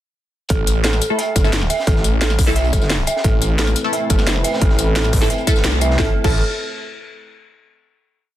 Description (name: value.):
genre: dark technical drum and bass.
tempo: 175 BPM.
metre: 4/4.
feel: straight.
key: A minor.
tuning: A4 = 436 Hz.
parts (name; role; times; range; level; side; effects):
dark detuned synth bell; arpeggios; 0.5-6.4 s; A4 to E5; -23 LUFS; right 3 dB; chorus, sidechain pumping, tape echo.
snarling distorted saw bass; bass; 0.5-6.4 s; G1 to C2; -19 LUFS; equal; distortion, overdrive, sidechain pumping.
crunchy breakbeat drum kit; drums; 0.5-6.0 s; hi-hat, snare drum; -31 LUFS; right 1 dB; high-pass filter on hats, high-pass filter on snare, high-pass filter on room.
drum and bass drum kit; drums; 0.5-6.3 s; crash cymbal, hi-hat, snare drum, tambourine; -22 LUFS; left 1 dB; none.
electronic kick drum; drums; 0.5-6.3 s; none; -18 LUFS; equal; none.
filtered dub chord stab; stabs; 1.1-6.4 s; A3 to A4; -24 LUFS; left 1 dB; phaser, lush chorus, tape echo.
dark analog pad; sustained chords; 3.2-6.1 s; A3 to B4; -26 LUFS; left 1 dB; chorus, sidechain pumping.
room: light reverb.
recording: dense, heavily limited modern master.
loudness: -15 LUFS.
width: side -13 dB against mid.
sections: 0.5-6.0 drop; 6.0-7.4 final chord.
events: drop 0.5-6.0; band accent 5.6.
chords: 0.5 Amadd9.